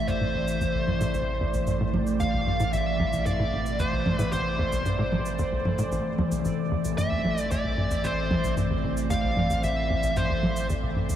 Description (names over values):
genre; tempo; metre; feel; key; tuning
ambient, sequencer-driven space music; 113 BPM; 4/4; straight; A minor; A4 = 440 Hz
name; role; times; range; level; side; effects
dark smooth lead guitar; melody; 0.0-10.7 s; C5 to F5; -29 LUFS; equal; overdrive, tape echo
evolving wavetable pad; sustained chords; 0.0-11.2 s; B2 to A4; -30 LUFS; equal; chorus, built-in reverb, phaser
tight sequencer bass; riff; 0.0-11.1 s; A1 to A2; -29 LUFS; equal; lush chorus, tape echo
warm sub bass; bass; 0.0-11.2 s; A1; -32 LUFS; equal; none
bubbling stepped-filter texture; texture; 0.0-11.2 s; D5; -37 LUFS; right 4 dB; chorus, built-in reverb
electronic cabasa and toms; percussion; 0.1-11.2 s; none; -32 LUFS; right 2 dB; none
room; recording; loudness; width
wet huge ambient reverb, RT60 8.4 s; none; -24 LUFS; side -10 dB against mid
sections
0.0-11.2 A section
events
none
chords
0.0 Am